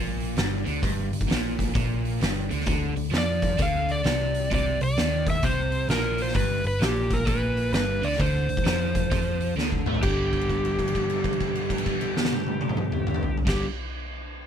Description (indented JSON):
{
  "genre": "blues rock power trio and southern rock",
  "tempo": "130 BPM",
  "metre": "4/4",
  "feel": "swing 64% on 8ths",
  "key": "unclear",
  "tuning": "A4 = 437 Hz",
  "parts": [
    { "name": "crunchy overdriven guitar", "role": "riff", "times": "0.0-13.7 s", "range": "G2 to A3", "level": "-28 LUFS", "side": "equal", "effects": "none" },
    { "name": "vintage muted picked electric bass", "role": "bass", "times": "0.0-13.6 s", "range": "G1 to A2", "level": "-29 LUFS", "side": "equal", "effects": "none" },
    { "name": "oversized low-tuned drum kit", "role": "drums", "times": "0.2-13.6 s", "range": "crash cymbal, hi-hat, kick drum, snare drum, toms", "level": "-27 LUFS", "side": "equal", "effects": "none" },
    { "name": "overdriven slide guitar", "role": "melody", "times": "3.2-13.6 s", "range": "G4 to F5", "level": "-28 LUFS", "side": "equal", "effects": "none" }
  ],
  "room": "light reverb",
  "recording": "none",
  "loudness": "-23 LUFS",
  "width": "side -8 dB against mid",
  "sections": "0.0-10.0 A section; 10.0-13.7 B section",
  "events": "drum fill 9.6-10.0; held note 10.0-13.4",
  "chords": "0.0 G5; 2.7 Csus24; 4.5 Bbadd9; 6.4 G; 8.2 D5; 10.0 G5",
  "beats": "0.36 | 0.82 1.28 1.75 2.21 | 2.67 3.13 3.60 4.06 | 4.52 4.98 5.44 5.90 | 6.36 6.82 7.28 7.74 | 8.20 8.66 9.12 9.58 | 10.04 10.49 10.95 11.41 | 11.87 12.32 12.78 13.24"
}